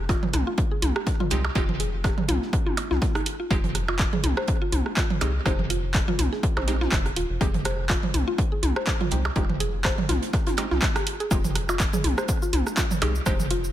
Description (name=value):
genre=minimal techno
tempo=123 BPM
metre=4/4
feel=swing 56% on 16ths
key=F minor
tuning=A4 = 442 Hz
part: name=rubbery square bass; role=bass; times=0.0-13.7 s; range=Eb1 to C2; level=-27 LUFS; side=equal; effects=sidechain pumping
part: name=mallet-like synth pluck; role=riff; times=0.1-13.6 s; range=Eb4 to C5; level=-32 LUFS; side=equal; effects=chorus, sidechain pumping, dub echo
part: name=damped 70s drum kit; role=drums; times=0.1-13.6 s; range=hi-hat, snare drum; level=-40 LUFS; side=right 5 dB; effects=none
part: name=electronic kick drum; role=drums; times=0.1-13.4 s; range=none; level=-25 LUFS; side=equal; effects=overdrive
part: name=minimal click drum kit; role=percussion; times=0.1-13.5 s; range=percussion blips, rim click, toms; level=-28 LUFS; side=right 2 dB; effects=overdrive, digital delay
part: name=punchy analog drum machine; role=drums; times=0.3-13.7 s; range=handclaps, hi-hat, shaker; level=-30 LUFS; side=right 1 dB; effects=overdrive
part: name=wavetable chord stab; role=stabs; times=1.3-13.3 s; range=Ab3 to G4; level=-33 LUFS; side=right 3 dB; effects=digital delay
room=digital ambience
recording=none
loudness=-22 LUFS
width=side -12 dB against mid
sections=0.0-13.7 A section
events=none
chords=0.0 Fm